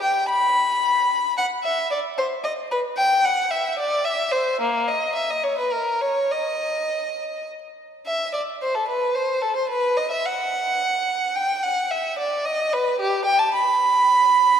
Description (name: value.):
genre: classical, baroque-style suite movement for unaccompanied violin.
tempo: 110 BPM.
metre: 3/4.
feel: rubato.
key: unclear.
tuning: A4 = 440 Hz.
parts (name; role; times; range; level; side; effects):
rich violin; solo; 0.0-14.6 s; A#3 to B5; -20 LUFS; equal; none.
room: wet church reverb, RT60 3.0 s.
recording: minimal, uncompressed stereo recording, vinyl crackle.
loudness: -20 LUFS.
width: side -8 dB against mid.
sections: 0.0-8.1 A section; 8.1-14.6 A section.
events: none.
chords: none.